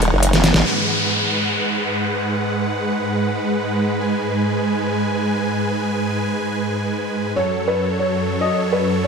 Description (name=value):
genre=heavy wobble dubstep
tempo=143 BPM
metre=4/4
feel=half-time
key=G# phrygian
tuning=A4 = 440 Hz
part: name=supersaw chords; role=sustained chords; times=0.0-9.1 s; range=F#2 to G#5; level=-20 LUFS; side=right 1 dB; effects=none
part: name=formant-sweep wobble bass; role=bass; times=0.0-0.6 s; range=D#1 to G#1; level=-16 LUFS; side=equal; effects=chorus, overdrive
part: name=dubstep drum kit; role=drums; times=0.0-0.6 s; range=hi-hat, snare drum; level=-19 LUFS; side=equal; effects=overdrive
part: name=downlifter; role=sound effects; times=0.6-4.0 s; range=none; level=-23 LUFS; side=equal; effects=none
part: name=felt-muted upright piano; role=melody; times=7.4-9.1 s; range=B4 to D#5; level=-20 LUFS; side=left 1 dB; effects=dub echo
room=moderate lush hall reverb, RT60 2.1 s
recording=none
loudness=-17 LUFS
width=side -5 dB against mid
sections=0.6-9.1 A section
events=drum fill 0.3-0.6; band accent 0.5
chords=0.0 G#5; 0.6 G#m7; 7.4 F#m